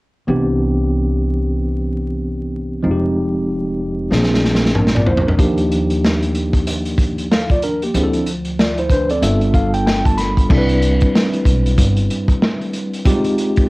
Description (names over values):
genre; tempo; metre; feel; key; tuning
hip hop, jazz-hop; 94 BPM; 4/4; swing 60% on 16ths; unclear; A4 = 440 Hz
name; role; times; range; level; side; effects
tine electric piano; accompaniment; 0.3-13.7 s; E3 to B5; -18 LUFS; equal; medium stereo tremolo, cassette tape
upright bass; bass; 0.3-12.1 s; F1 to Eb2; -20 LUFS; equal; none
crunchy breakbeat drum kit; drums; 4.1-13.7 s; crash cymbal, hi-hat, kick drum, snare drum, toms; -17 LUFS; equal; cassette tape
room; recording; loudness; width
light reverb; home recording on cassette, vinyl crackle; -14 LUFS; side -22 dB against mid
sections
0.3-10.5 A section; 10.5-13.7 B section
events
drum fill 4.1-5.4; tine electric piano fill 8.6-10.5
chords
0.3 Cmaj7; 2.8 Fm7; 4.1 Bb7; 5.4 Ebmaj9; 7.9 Dm7; 9.2 G7; 10.5 Cmaj7; 13.1 Fm7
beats
| 0.28 0.92 1.56 2.20 | 2.84 3.48 4.11 4.75 | 5.39 6.03 6.67 7.30 | 7.94 8.58 9.22 9.86 | 10.50 11.13 11.77 12.41 | 13.05 13.69